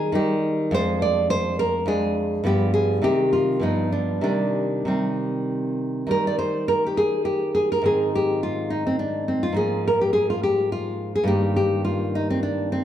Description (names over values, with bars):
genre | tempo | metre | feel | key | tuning
classical, baroque-style dance for nylon-string guitar | 104 BPM | 3/4 | rubato | C minor, Eb major from 6.1 s | A4 = 440 Hz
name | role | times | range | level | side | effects
nylon-string guitar | solo | 0.0-12.8 s | F2 to D5 | -20 LUFS | equal | none
room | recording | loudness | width
wet recital hall reverb, RT60 1.7 s | dark, warm production | -20 LUFS | side -10 dB against mid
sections
0.0-6.1 A section; 6.1-12.8 A section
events
none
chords
0.0 Eb; 0.7 Ddim/F; 2.5 G7; 3.1 Cm; 3.6 G7; 4.3 Cm; 6.1 Eb; 7.9 Ab; 9.6 Bb5/Ab; 11.3 Eb/G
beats
0.17 | 0.75 1.32 1.90 | 2.48 3.05 3.64 | 4.26 4.88 5.49 | 6.11 6.70 7.28 | 7.87 8.45 9.03 | 9.61 10.17 10.74 | 11.31 11.88 12.45